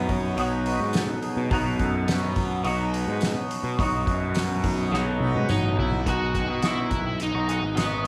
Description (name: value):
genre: psychedelic rock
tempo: 106 BPM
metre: 4/4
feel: straight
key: B major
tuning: A4 = 440 Hz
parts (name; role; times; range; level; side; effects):
- bright tonewheel organ; sustained chords; 0.0-8.1 s; F#3 to G#5; -34 LUFS; equal; slow rotary speaker
- twangy electric guitar; riff; 0.0-8.1 s; B2 to F#4; -31 LUFS; equal; phaser
- fuzz picked electric bass; bass; 0.0-8.1 s; G#1 to B2; -31 LUFS; equal; overdrive
- tanpura; drone; 0.0-8.1 s; B2 to B3; -39 LUFS; equal; none
- soft-mallet drum kit; drums; 0.1-7.9 s; hi-hat, kick drum, snare drum, toms; -30 LUFS; equal; none
- tambourine; percussion; 0.9-7.9 s; none; -44 LUFS; equal; none
- overdriven slide guitar; melody; 5.5-8.1 s; B3 to F#4; -31 LUFS; equal; none
room: light reverb, studio reverb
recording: none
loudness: -25 LUFS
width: mono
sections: 0.0-6.1 A section; 6.1-8.1 B section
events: tonewheel organ solo 0.0-6.1; drum fill 4.9-6.1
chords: 0.0 B; 6.1 B6